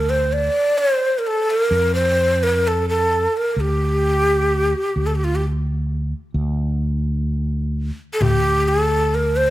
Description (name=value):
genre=Arabic maqam ensemble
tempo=129 BPM (eighths)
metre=10/8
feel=straight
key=D minor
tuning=A4 = 440 Hz
part: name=breathy ney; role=melody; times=0.0-9.5 s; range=F4 to D5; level=-18 LUFS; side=equal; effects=none
part: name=fretless electric bass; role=bass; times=0.0-9.5 s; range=D2 to F2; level=-21 LUFS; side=equal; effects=none
part: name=darbuka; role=percussion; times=8.2-9.3 s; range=none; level=-22 LUFS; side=left 2 dB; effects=none
room=little or no reverb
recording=none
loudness=-17 LUFS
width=side -15 dB against mid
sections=0.0-9.5 A section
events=none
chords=none